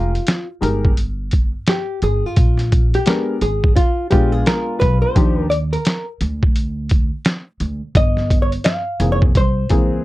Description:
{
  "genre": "hip hop, jazz-hop",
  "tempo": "86 BPM",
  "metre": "4/4",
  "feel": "swing 64% on 16ths",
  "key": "unclear",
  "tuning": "A4 = 438 Hz",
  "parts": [
    { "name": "hollow-body jazz guitar", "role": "melody", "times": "0.0-10.0 s", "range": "F4 to F5", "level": "-22 LUFS", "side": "left 1 dB", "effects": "none" },
    { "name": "warm upright piano", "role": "accompaniment", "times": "0.0-10.0 s", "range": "E3 to Bb4", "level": "-21 LUFS", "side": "left 2 dB", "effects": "none" },
    { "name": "upright bass", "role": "bass", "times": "0.0-10.0 s", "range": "F1 to Eb2", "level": "-20 LUFS", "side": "equal", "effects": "none" },
    { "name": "boom bap sampler-style drum kit", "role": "drums", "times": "0.2-9.9 s", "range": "hi-hat, kick drum, snare drum", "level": "-16 LUFS", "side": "equal", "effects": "none" }
  ],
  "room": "little or no reverb",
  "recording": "dark, warm production",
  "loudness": "-15 LUFS",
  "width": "side -17 dB against mid",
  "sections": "0.0-10.0 A section",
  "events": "hollow-body jazz guitar solo 0.0-10.0",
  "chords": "0.0 Fm11; 2.4 Bb7b9; 5.2 Ebmaj7(no3); 8.0 Fm11; 9.4 C7b13"
}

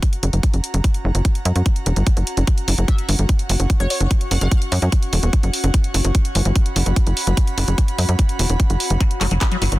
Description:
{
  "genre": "psychedelic trance",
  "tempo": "147 BPM",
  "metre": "4/4",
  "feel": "straight",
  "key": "F# major",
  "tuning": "A4 = 437 Hz",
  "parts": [
    { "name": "electronic kick drum", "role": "drums", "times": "0.0-9.5 s", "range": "none", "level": "-17 LUFS", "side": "equal", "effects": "small room ambience" },
    { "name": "garage drum kit", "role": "drums", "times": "0.0-9.8 s", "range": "handclaps, hi-hat", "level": "-25 LUFS", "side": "right 1 dB", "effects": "small room ambience, soft clipping on snare" },
    { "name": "airy breathy pad", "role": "texture", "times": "0.0-9.8 s", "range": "C#4 to C#6", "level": "-29 LUFS", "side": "equal", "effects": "chorus, sidechain pumping" },
    { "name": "tight sequencer bass", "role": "bass", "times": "0.2-9.8 s", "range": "E1 to F#2", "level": "-17 LUFS", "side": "equal", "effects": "none" },
    { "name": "resonant blip pluck", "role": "second line", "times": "2.9-4.8, 9.4-9.6 s", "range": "C#5 to F#5", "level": "-30 LUFS", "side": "equal", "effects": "phaser, sidechain pumping, high-pass filter, digital delay" },
    { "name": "swarming drone", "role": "sustained chords", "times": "9.6-9.8 s", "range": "none", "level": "barely audible", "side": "none", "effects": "none" },
    { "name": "liquid acid bass", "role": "riff", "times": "9.0-9.6 s", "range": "F#3", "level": "-26 LUFS", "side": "left 4 dB", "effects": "chorus, auto-pan, sidechain pumping, tape echo" }
  ],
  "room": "little or no reverb",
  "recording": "dense, heavily limited modern master",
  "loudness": "-16 LUFS",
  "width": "side -18 dB against mid",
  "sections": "0.0-9.8 A section",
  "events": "fade-in on analog synth pad 0.0-9.8",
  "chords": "0.0 F#5"
}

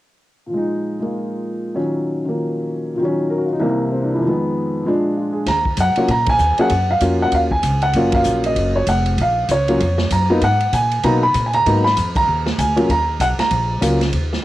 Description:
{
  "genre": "jazz piano trio",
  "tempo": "194 BPM",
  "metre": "4/4",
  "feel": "swing 61% on 8ths",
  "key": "Eb minor from 5.5 s",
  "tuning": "A4 = 440 Hz",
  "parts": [
    { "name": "warm upright piano", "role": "melody", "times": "0.5-14.0 s", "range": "C2 to Cb6", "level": "-17 LUFS", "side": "equal", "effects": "cassette tape" },
    { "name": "upright bass", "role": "bass", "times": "5.5-14.4 s", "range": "F1 to Cb3", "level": "-20 LUFS", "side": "equal", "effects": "tube saturation" },
    { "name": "swinging big-band drum kit", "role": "drums", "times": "5.5-14.4 s", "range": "hi-hat, kick drum, ride cymbal, snare drum", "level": "-25 LUFS", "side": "right 1 dB", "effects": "none" }
  ],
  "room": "light reverb",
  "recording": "home recording on cassette",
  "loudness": "-16 LUFS",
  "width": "side -15 dB against mid",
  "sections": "0.5-5.5 A section; 5.5-14.4 B section",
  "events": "band accent 6.2, 8.1, 12.1",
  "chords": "0.5 Bb7sus4; 1.8 Ebm7/Bb; 3.6 C7; 4.2 Fm7b5; 4.9 Bb7; 5.5 Ebm9; 10.4 Abm7; 12.9 Eb7(no3)"
}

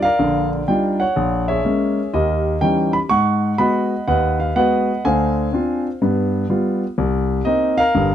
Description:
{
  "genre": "solo jazz",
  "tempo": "124 BPM",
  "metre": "4/4",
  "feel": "swing 66% on 8ths",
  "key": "unclear",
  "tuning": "A4 = 441 Hz",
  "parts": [
    { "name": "warm concert grand piano", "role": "solo", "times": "0.0-8.1 s", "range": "G1 to Db6", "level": "-16 LUFS", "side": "equal", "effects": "none" }
  ],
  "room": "light reverb",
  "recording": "none",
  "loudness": "-16 LUFS",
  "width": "side -10 dB against mid",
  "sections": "0.0-8.1 A section",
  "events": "none",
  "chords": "0.0 Ebmaj9; 1.2 Bbm7b5; 2.1 Eb7b9; 3.1 Abm7; 5.0 Dm7b5; 6.0 G7; 7.0 Cm7"
}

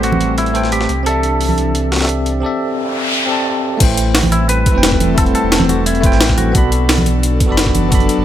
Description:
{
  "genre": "liquid drum and bass",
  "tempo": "175 BPM",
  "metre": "4/4",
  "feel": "straight",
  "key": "A dorian",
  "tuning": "A4 = 443 Hz",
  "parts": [
    { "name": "clean electric guitar", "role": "melody", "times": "0.0-6.7 s", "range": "E4 to B4", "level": "-21 LUFS", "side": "equal", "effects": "ping-pong delay" },
    { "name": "bell-like tine electric piano", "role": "accompaniment", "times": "0.0-8.2 s", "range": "A3 to B5", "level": "-18 LUFS", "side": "equal", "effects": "medium stereo tremolo, dub echo" },
    { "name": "airy breathy pad", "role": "sustained chords", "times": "0.0-8.2 s", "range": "E3 to A4", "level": "-22 LUFS", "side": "left 1 dB", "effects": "chorus, sidechain pumping" },
    { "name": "sub bass with octave", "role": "bass", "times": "0.0-8.2 s", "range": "E1 to C2", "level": "-18 LUFS", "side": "equal", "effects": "none" },
    { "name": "breakbeat sampler-style drum kit", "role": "drums", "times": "0.0-8.2 s", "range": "hi-hat, snare drum", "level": "-22 LUFS", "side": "right 1 dB", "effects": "high-pass filter on hats, high-pass filter on snare" },
    { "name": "congas", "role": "percussion", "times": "0.1-1.6, 4.2-7.8 s", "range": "none", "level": "-20 LUFS", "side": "right 3 dB", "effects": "none" },
    { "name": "noise sweep", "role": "sound effects", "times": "2.7-3.8 s", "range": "none", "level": "-20 LUFS", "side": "equal", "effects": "none" },
    { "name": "breakbeat sampler-style drum kit", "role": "drums", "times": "3.8-8.2 s", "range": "crash cymbal, hi-hat, snare drum", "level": "-18 LUFS", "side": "left 1 dB", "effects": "none" },
    { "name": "electronic kick drum", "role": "drums", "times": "3.8-8.0 s", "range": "none", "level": "-15 LUFS", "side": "equal", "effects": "overdrive" }
  ],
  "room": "light reverb",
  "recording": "none",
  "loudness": "-12 LUFS",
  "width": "side -11 dB against mid",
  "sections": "0.0-3.8 A section; 3.8-8.2 B section",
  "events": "noise sweep 2.7-3.8; drop 3.8-8.2",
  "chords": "0.0 Am9; 0.9 C69; 3.8 Am9; 6.5 Bm7"
}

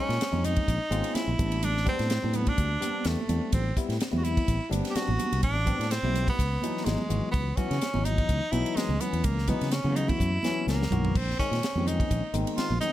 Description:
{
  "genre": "electric jazz fusion",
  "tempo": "126 BPM",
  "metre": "4/4",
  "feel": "swing 54% on 16ths",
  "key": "unclear",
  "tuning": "A4 = 440 Hz",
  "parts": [
    { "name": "bright tenor saxophone", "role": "melody", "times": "0.0-12.9 s", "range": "Ab3 to G4", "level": "-31 LUFS", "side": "right 1 dB", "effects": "none" },
    { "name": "barky tine electric piano", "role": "accompaniment", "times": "0.0-12.9 s", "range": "Eb3 to Gb4", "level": "-34 LUFS", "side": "left 6 dB", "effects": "wide subtle chorus" },
    { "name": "fretless electric bass", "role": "bass", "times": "0.1-12.8 s", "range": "G1 to Db3", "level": "-28 LUFS", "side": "equal", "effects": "none" },
    { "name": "tight funk drum kit", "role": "drums", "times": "0.1-12.9 s", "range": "crash cymbal, hi-hat, kick drum, ride cymbal, snare drum, toms", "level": "-31 LUFS", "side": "equal", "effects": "none" },
    { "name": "congas", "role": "percussion", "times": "0.3-12.9 s", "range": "none", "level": "-36 LUFS", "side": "right 5 dB", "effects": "none" }
  ],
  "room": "light reverb",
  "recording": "none",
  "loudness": "-25 LUFS",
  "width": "side -13 dB against mid",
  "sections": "0.0-11.1 A section; 11.1-12.9 A section",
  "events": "drum fill 10.2-11.1",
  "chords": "0.0 Bbm11; 1.4 Am11; 6.4 Dbm11; 11.1 Bbm11"
}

